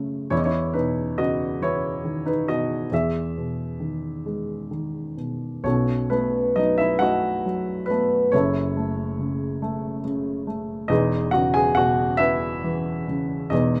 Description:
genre	classical, lyrical solo piano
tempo	46 BPM (dotted quarters)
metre	6/8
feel	rubato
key	unclear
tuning	A4 = 440 Hz
part	dark baby grand piano	solo	0.0-13.8 s	E1 to G#5	-24 LUFS	equal	none
room	moderate studio reverb, RT60 0.6 s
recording	none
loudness	-24 LUFS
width	mono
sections	0.0-5.7 A section; 5.7-13.8 A section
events	none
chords	0.3 C#m9/E; 2.9 Emaj7; 5.7 B9; 8.3 F#m7; 10.9 C#m9/E

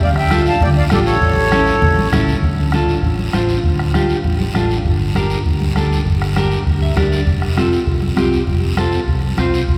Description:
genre	latin, cumbia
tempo	198 BPM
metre	4/4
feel	straight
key	D minor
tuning	A4 = 440 Hz
part	accordion	melody	0.0-2.1 s	A4 to A5	-21 LUFS	equal	none
part	fingered electric bass	bass	0.0-9.8 s	F1 to D2	-21 LUFS	equal	none
part	bombo	percussion	0.0-9.8 s	none	-23 LUFS	equal	none
part	guiro	percussion	0.0-9.8 s	none	-32 LUFS	equal	none
part	clean electric guitar	accompaniment	0.3-9.6 s	C4 to E5	-22 LUFS	equal	none
part	congas	percussion	0.3-9.5 s	none	-26 LUFS	equal	none
room	wet cathedral reverb, RT60 4.6 s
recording	recorded in a church or concert hall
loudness	-16 LUFS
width	mono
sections	0.0-2.4 A section; 2.4-9.8 B section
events	clean electric guitar fill 6.7-7.3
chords	0.0 Dm; 1.2 A; 2.4 Dm; 4.8 Gm; 7.3 F

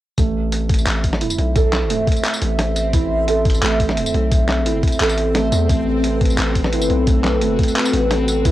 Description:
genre	half-time drum and bass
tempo	174 BPM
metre	4/4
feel	half-time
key	A dorian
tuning	A4 = 439 Hz
part	dark analog pad	sustained chords	0.8-8.5 s	C4 to E5	-22 LUFS	left 1 dB	chorus, sidechain pumping
part	felt-muted upright piano	arpeggios	0.2-8.5 s	A3 to A4	-23 LUFS	right 7 dB	tape echo
part	long sustained 808-style bass	bass	0.2-8.5 s	A1 to E2	-21 LUFS	left 1 dB	none
part	boom bap sampler-style drum kit	drums	0.2-8.5 s	handclaps, hi-hat, snare drum, tambourine	-23 LUFS	equal	studio reverb, cassette tape
part	electronic kick drum	drums	0.2-8.5 s	none	-17 LUFS	left 1 dB	studio reverb, cassette tape
part	backwards swelling texture	texture	1.9-8.5 s	C4 to C5	-30 LUFS	left 2 dB	built-in reverb
room	moderate small room reverb, RT60 0.5 s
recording	home recording on cassette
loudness	-15 LUFS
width	side -14 dB against mid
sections	0.2-8.5 A section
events	drop 0.2-8.5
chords	0.2 Am

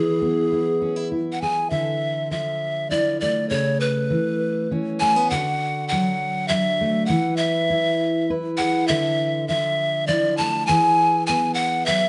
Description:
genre	acoustic folk duo or small band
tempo	100 BPM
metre	3/4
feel	straight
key	unclear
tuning	A4 = 441 Hz
part	breathy hollow pan flute	melody	0.0-12.1 s	G#4 to A5	-23 LUFS	equal	none
part	fingerpicked steel-string acoustic guitar	accompaniment	0.0-12.1 s	C#3 to B4	-26 LUFS	equal	none
room	moderate large studio reverb, RT60 0.8 s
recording	nothing above 10.9 kHz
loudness	-22 LUFS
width	mono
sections	0.0-1.7 A section; 1.7-12.1 B section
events	none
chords	0.0 E; 1.7 Dmadd9; 3.5 Aadd9/C#; 5.3 D; 7.1 E; 8.9 Dmadd9; 10.7 E

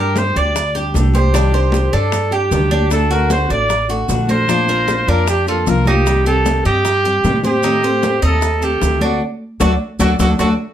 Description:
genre	latin, Cuban son and guajira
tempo	152 BPM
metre	4/4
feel	straight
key	unclear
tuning	A4 = 440 Hz
part	warm trumpet	melody	0.0-10.5 s	F#4 to D5	-18 LUFS	right 2 dB	none
part	nylon-string guitar	accompaniment	0.0-10.5 s	C3 to G4	-21 LUFS	left 4 dB	none
part	Cuban tres	arpeggios	0.0-10.5 s	D4 to Eb5	-22 LUFS	right 1 dB	none
part	upright bass	bass	0.0-10.5 s	A1 to A2	-18 LUFS	equal	none
part	bongos	percussion	0.2-10.5 s	none	-27 LUFS	left 7 dB	none
part	congas	percussion	0.2-10.5 s	none	-24 LUFS	right 1 dB	none
part	maracas	percussion	0.2-10.5 s	none	-31 LUFS	right 5 dB	none
room	moderate studio reverb, RT60 0.6 s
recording	none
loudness	-13 LUFS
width	side -10 dB against mid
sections	0.0-10.7 A section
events	band accent 9.2-10.7; drum fill 9.6-10.7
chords	0.0 G5; 1.3 Cmadd9; 2.9 D; 4.5 Bb; 6.1 Cm; 7.6 Adim; 9.2 D

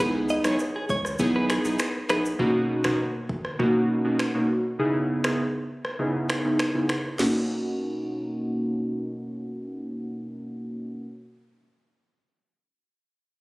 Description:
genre	afrobeats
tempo	100 BPM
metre	4/4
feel	straight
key	B major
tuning	A4 = 439 Hz
part	glassy digital keys	accompaniment	0.0-11.1 s	B2 to G#4	-25 LUFS	equal	chorus, low-pass filter
part	direct-recorded clean electric guitar	riff	0.0-2.2 s	G#4 to D#5	-29 LUFS	right 1 dB	tremolo, low-pass filter, ping-pong delay
part	saturated sub bass	bass	0.0-2.4 s	A#1 to C#2	-34 LUFS	equal	none
part	afro-pop drum kit	drums	0.0-7.3 s	crash cymbal, finger snaps, kick drum, rim click, shaker, snare drum, toms	-30 LUFS	equal	none
part	downlifter	sound effects	0.4-2.4 s	none	-53 LUFS	equal	none
room	light reverb, digital ambience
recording	recorded on a phone in the room, studio reverb, compression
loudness	-24 LUFS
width	side -22 dB against mid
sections	0.0-7.2 A section; 7.2-9.6 B section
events	filter sweep 0.0-7.2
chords	0.0 C#m9; 2.4 Bmaj9; 4.8 C#m9; 7.2 Bmaj9

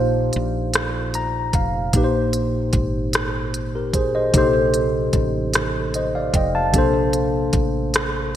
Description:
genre	slow six-eight R&B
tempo	50 BPM (dotted quarters)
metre	6/8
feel	straight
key	Bb major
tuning	A4 = 440 Hz
part	tine electric piano	accompaniment	0.0-8.4 s	Bb2 to Bb5	-20 LUFS	left 1 dB	overdrive, wide subtle chorus
part	woody fretless electric bass	bass	0.0-8.4 s	F1 to Bb1	-26 LUFS	right 1 dB	none
part	smooth R&B drum kit	drums	0.3-8.1 s	hi-hat, kick drum, rim click	-21 LUFS	equal	gated reverb
room	wet lush hall reverb, RT60 2.2 s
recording	bright 1980s-style digital production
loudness	-18 LUFS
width	side -11 dB against mid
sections	0.0-8.4 A section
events	tine electric piano fill 0.7-1.9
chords	0.0 Eb69/Bb; 1.9 Abmaj9; 4.3 F9; 6.7 Bbmaj9

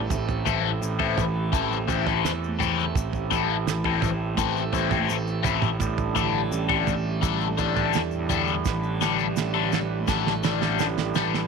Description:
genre	psychedelic rock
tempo	84 BPM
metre	4/4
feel	straight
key	A minor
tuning	A4 = 440 Hz
part	percussive tonewheel organ	sustained chords	0.0-11.5 s	G3 to B4	-32 LUFS	right 15 dB	slow rotary speaker
part	fuzz picked electric bass	bass	0.0-11.5 s	A1 to E2	-28 LUFS	right 1 dB	overdrive
part	tanpura	drone	0.0-11.5 s	A2 to A3	-34 LUFS	right 2 dB	none
part	damped 70s drum kit	drums	0.1-11.5 s	kick drum, snare drum, toms	-28 LUFS	right 5 dB	none
part	tube shaker	percussion	0.1-11.3 s	none	-42 LUFS	left 14 dB	none
part	crunchy overdriven guitar	riff	0.5-11.4 s	D3 to A4	-26 LUFS	left 15 dB	phaser
room	small room reverb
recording	1960s-style stereo with parts hard left and right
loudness	-22 LUFS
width	side -5 dB against mid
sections	0.0-11.5 A section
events	drum fill 8.7-11.5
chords	0.1 Am7; 5.8 Gsus2/A

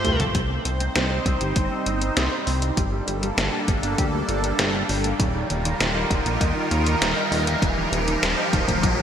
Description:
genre	synthwave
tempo	99 BPM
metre	4/4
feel	straight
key	unclear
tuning	A4 = 439 Hz
part	lush unison pad	sustained chords	0.0-9.0 s	G3 to C5	-26 LUFS	right 1 dB	chorus, phaser, sidechain pumping
part	mellow electric guitar	riff	0.0-9.0 s	Eb3 to C5	-32 LUFS	equal	lush chorus, vintage 12-bit sampler grit, low-pass filter, digital delay
part	chorused synth bass	bass	0.0-9.0 s	Eb1 to Eb2	-26 LUFS	equal	none
part	detuned 8-bit digital drum machine	drums	0.0-9.0 s	hi-hat, snare drum, toms	-26 LUFS	equal	high-pass filter on hats, high-pass filter on snare, high-pass filter on toms, gated reverb
part	electronic kick drum	drums	0.3-9.0 s	none	-24 LUFS	equal	overdrive
part	riser	sound effects	2.9-9.0 s	none	-30 LUFS	left 1 dB	none
room	moderate lush hall reverb, RT60 2.7 s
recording	bright 1980s-style digital production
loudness	-20 LUFS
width	side -8 dB against mid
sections	0.3-9.0 A section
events	drum fill 0.0-0.3; filter sweep on clean electric guitar 0.3-9.0; riser 2.9-9.0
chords	0.3 Cm; 2.8 Gmadd9; 5.2 Ebadd9

